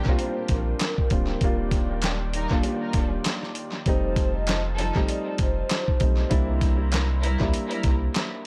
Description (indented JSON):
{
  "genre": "hip hop, boom-bap hip-hop",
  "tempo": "98 BPM",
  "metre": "4/4",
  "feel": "swing 57% on 16ths",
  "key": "unclear",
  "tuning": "A4 = 440 Hz",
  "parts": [
    { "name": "warm analog pad", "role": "sustained chords", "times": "0.0-8.5 s", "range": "Eb3 to Bb5", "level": "-40 LUFS", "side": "equal", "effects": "lush chorus, high-pass filter, low-pass filter" },
    { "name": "warm studio string section", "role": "stabs", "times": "0.0-7.5 s", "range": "D3 to Bb4", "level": "-37 LUFS", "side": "equal", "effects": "high-pass filter, low-pass filter, tape echo" },
    { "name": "dark upright piano", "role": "accompaniment", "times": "0.1-8.5 s", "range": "Eb2 to F4", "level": "-32 LUFS", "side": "equal", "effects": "cassette tape, high-pass filter, low-pass filter, tape echo" },
    { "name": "soft dub sub bass", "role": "bass", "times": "0.1-8.1 s", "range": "D1 to D2", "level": "-29 LUFS", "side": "equal", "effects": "none" },
    { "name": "dusty soul sampler-style drum kit", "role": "drums", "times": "0.1-8.3 s", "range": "handclaps, hi-hat, kick drum, snare drum", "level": "-27 LUFS", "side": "equal", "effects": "tape echo" },
    { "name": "vibraphone with soft mallets", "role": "melody", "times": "0.2-6.0 s", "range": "Bb4 to Eb5", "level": "-36 LUFS", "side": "equal", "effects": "high-pass filter, low-pass filter, tape echo" }
  ],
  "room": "small room reverb",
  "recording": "echo-heavy mix",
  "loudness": "-24 LUFS",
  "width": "mono",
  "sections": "0.0-8.5 A section",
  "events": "none",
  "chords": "0.0 Bb6; 1.4 Ebmaj7; 3.9 F7; 6.3 C7"
}